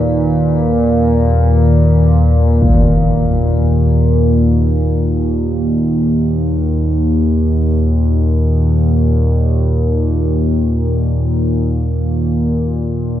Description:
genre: dark ambient drone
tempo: free time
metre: none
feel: none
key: unclear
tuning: A4 = 442 Hz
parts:
  - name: analog drone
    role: drone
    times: 0.0-13.2 s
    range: Eb2 to Bb2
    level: -12 LUFS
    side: equal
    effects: chorus
  - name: bronze singing bowl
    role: texture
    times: 0.0-13.2 s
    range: B4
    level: -34 LUFS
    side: right 3 dB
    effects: none
  - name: impact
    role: percussion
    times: 2.6-2.9 s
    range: none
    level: -18 LUFS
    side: left 1 dB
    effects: low-pass filter on sfx
room: wet cathedral reverb, RT60 5.0 s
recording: dark, warm production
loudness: -12 LUFS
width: side -12 dB against mid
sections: 0.0-13.2 A section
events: none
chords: 0.0 Bmaj7/D#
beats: free time

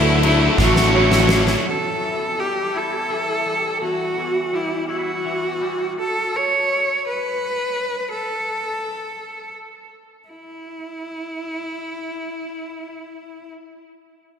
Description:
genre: post-rock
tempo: 56 BPM (dotted quarters)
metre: 6/8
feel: straight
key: E dorian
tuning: A4 = 440 Hz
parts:
  - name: rich cello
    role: melody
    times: 0.0-13.5 s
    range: E4 to C#5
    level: -22 LUFS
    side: equal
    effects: tape echo
  - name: dark analog pad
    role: sustained chords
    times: 0.0-1.6 s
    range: A4 to A5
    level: -36 LUFS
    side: equal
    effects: none
  - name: felt-muted upright piano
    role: arpeggios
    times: 0.0-1.7 s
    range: B4 to C#5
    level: -32 LUFS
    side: right 4 dB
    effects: none
  - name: twangy electric guitar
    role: arpeggios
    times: 0.0-6.0 s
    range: E2 to E4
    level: -28 LUFS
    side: left 3 dB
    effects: ensemble chorus, tape echo
  - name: distorted electric guitar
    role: riff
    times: 0.0-1.7 s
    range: D3 to D4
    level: -22 LUFS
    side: left 11 dB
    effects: overdrive
  - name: tight distorted guitar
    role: riff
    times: 0.0-1.6 s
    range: D3 to D4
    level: -24 LUFS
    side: right 10 dB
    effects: distortion
  - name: growling fingered electric bass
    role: bass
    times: 0.0-1.5 s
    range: A1 to D2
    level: -18 LUFS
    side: equal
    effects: overdrive
  - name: huge arena drum kit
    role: drums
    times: 0.2-1.6 s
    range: kick drum, ride cymbal, snare drum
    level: -23 LUFS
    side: right 1 dB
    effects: none
room: wet plate reverb, RT60 2.7 s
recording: dreamy mix soaked in reverb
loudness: -18 LUFS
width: side -7 dB against mid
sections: 0.0-1.7 A section; 1.7-10.3 B section; 10.3-14.4 C section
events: drum fill 0.6-1.7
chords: 0.0 Dadd9; 1.7 Emadd9; 6.0 N.C.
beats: 0.59 | 1.66 2.73 | 3.81 4.88 | 5.96 7.04 | 8.11 9.19 | 10.27 11.35 | 12.43 13.51

